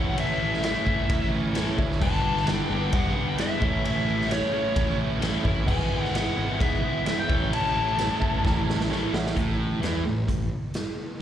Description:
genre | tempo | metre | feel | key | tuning
classic rock | 131 BPM | 4/4 | straight | A mixolydian | A4 = 442 Hz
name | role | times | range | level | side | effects
dark smooth lead guitar | melody | 0.0-9.1 s | C#5 to A5 | -29 LUFS | left 2 dB | overdrive, slapback echo
warm upright piano | accompaniment | 0.0-9.3 s | D4 to A5 | -39 LUFS | left 2 dB | slapback echo
distorted electric guitar | riff | 0.0-10.5 s | G2 to E4 | -31 LUFS | right 10 dB | overdrive, slapback echo
sludgy distorted guitar | riff | 0.0-10.5 s | A2 to B4 | -31 LUFS | left 8 dB | overdrive, slapback echo
fuzz picked electric bass | bass | 0.0-10.5 s | G1 to G#2 | -30 LUFS | equal | overdrive
raw garage drum kit | drums | 0.2-10.9 s | crash cymbal, hi-hat, kick drum, ride cymbal, snare drum | -27 LUFS | equal | none
room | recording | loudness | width
light reverb | live gig heard through the venue's PA, club reverb | -23 LUFS | side -10 dB against mid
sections
0.0-9.4 A section; 9.4-11.2 B section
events
upright piano fill 8.0-9.4; drum fill 8.4-9.4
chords
0.0 A; 2.0 G; 3.6 A; 5.7 E/G#; 7.3 A; 9.4 A5

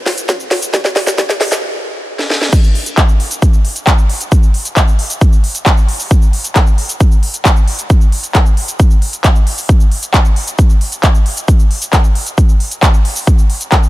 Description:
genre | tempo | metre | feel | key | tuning
trance | 134 BPM | 4/4 | straight | none | none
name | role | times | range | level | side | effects
techno drum kit | drums | 0.1-13.9 s | crash cymbal, handclaps, hi-hat, shaker, snare drum | -16 LUFS | equal | overdrive, sidechain pumping on hats, sidechain pumping on perc, sidechain pumping on cymbals
electronic kick drum | drums | 0.3-13.8 s | none | -9 LUFS | equal | high-pass filter on kick
room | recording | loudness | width
little or no reverb | high-pass filter | -10 LUFS | side -17 dB against mid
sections
0.0-2.5 A section; 2.5-13.9 B section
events
build-up 0.0-2.5; drum fill 0.0-1.6, 2.2-2.5; stop 1.6-2.5; drop 2.5-13.9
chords
none

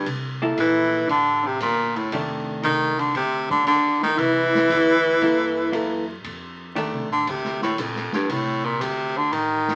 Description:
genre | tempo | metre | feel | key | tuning
jazz, small-group swing and bop | 116 BPM | 4/4 | swing 69% on 8ths | unclear | A4 = 440 Hz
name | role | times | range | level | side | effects
edgy baritone saxophone | melody | 0.0-9.8 s | F2 to E3 | -22 LUFS | equal | none
mellow alto saxophone | second line | 0.0-6.1 s | A3 to E4 | -31 LUFS | equal | none
upright bass | bass | 0.0-9.8 s | F1 to G2 | -38 LUFS | equal | none
swinging big-band drum kit | drums | 0.1-9.8 s | hi-hat, kick drum, ride cymbal, snare drum | -36 LUFS | equal | none
vintage hollow-body jazz guitar | accompaniment | 0.4-7.1 s | Eb3 to A4 | -28 LUFS | equal | none
room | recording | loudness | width
wet studio reverb, RT60 0.5 s | very old 78 rpm record, vinyl crackle | -22 LUFS | mono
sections
0.0-6.2 A section; 6.2-9.8 B section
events
baritone saxophone solo 6.2-9.8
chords
0.1 C6; 2.1 F6; 3.1 Cmadd9/D; 4.2 C13; 6.2 F13

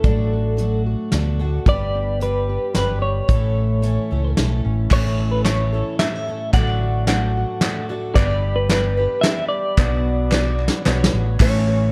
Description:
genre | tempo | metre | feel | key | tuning
indie folk with a building arrangement | 111 BPM | 3/4 | straight | unclear | A4 = 439 Hz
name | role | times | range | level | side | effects
clean electric guitar | melody | 0.0-11.9 s | A4 to F#5 | -26 LUFS | equal | tremolo, tape echo
fingerpicked steel-string acoustic guitar | accompaniment | 0.0-8.2 s | F#2 to A4 | -31 LUFS | equal | none
picked twelve-string acoustic guitar | accompaniment | 0.0-11.9 s | A2 to C#5 | -31 LUFS | equal | none
fingered electric bass | bass | 0.0-11.9 s | G1 to D2 | -23 LUFS | equal | none
soft brush drum kit | drums | 0.0-11.5 s | crash cymbal, hi-hat, kick drum, snare drum | -22 LUFS | equal | none
warm upright piano | accompaniment | 4.9-11.9 s | G1 to E5 | -33 LUFS | equal | none
group handclap | percussion | 4.9-11.7 s | none | -32 LUFS | equal | none
room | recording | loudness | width
light reverb | dark, warm production | -20 LUFS | mono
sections
0.0-4.9 A section; 4.9-11.4 B section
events
drum fill 10.3-11.4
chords
0.0 D/A; 1.7 G; 3.3 A; 6.5 D/A; 8.2 G; 9.8 Bmadd9; 11.4 A

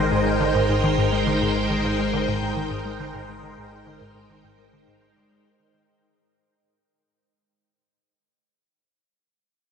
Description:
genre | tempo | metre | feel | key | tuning
ambient | 104 BPM | 4/4 | straight | Ab lydian | A4 = 440 Hz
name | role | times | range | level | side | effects
phased string machine | sustained chords | 0.0-5.9 s | Ab3 to G5 | -24 LUFS | equal | ensemble chorus, phaser
Celtic harp | arpeggios | 0.0-8.3 s | Ab3 to D5 | -30 LUFS | left 1 dB | auto-pan, ping-pong delay
resonant blip pluck | riff | 0.0-5.8 s | Ab2 to Ab3 | -26 LUFS | equal | phaser, ping-pong delay
round analog bass | bass | 0.0-5.9 s | Ab1 | -32 LUFS | equal | none
room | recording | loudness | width
wet cathedral reverb, RT60 5.2 s | in a vast, echoing space, nothing above 10.3 kHz | -20 LUFS | side -7 dB against mid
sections
0.0-5.9 A section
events
fade-out on synth arpeggio sound 0.0-5.9; fade-out on harp 0.0-5.9; fade-out on analog synth bass 0.0-5.9; fade-out 0.0-5.9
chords
0.0 Abmaj7

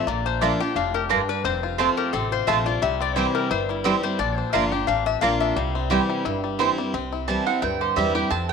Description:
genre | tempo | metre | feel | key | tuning
bluegrass | 175 BPM | 4/4 | swing 54% on 8ths | C mixolydian | A4 = 435 Hz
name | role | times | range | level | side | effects
bluegrass banjo | melody | 0.0-8.5 s | G3 to G4 | -28 LUFS | left 12 dB | none
lap resonator guitar | melody | 0.0-5.9 s | E4 to G5 | -26 LUFS | left 11 dB | tape echo
picked steel-string acoustic guitar | accompaniment | 0.0-8.5 s | F2 to F4 | -26 LUFS | right 2 dB | none
upright bass | bass | 0.0-8.5 s | F1 to F2 | -30 LUFS | right 1 dB | none
mandolin | stabs | 0.4-8.5 s | Bb3 to Bb5 | -26 LUFS | right 13 dB | tape echo
room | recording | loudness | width
light reverb | 1960s-style stereo with parts hard left and right | -20 LUFS | side -6 dB against mid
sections
0.0-6.9 A section; 6.9-8.5 B section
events
mandolin solo 6.9-8.5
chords
0.1 Bb; 1.4 F; 2.8 C; 4.2 Bb; 5.6 C

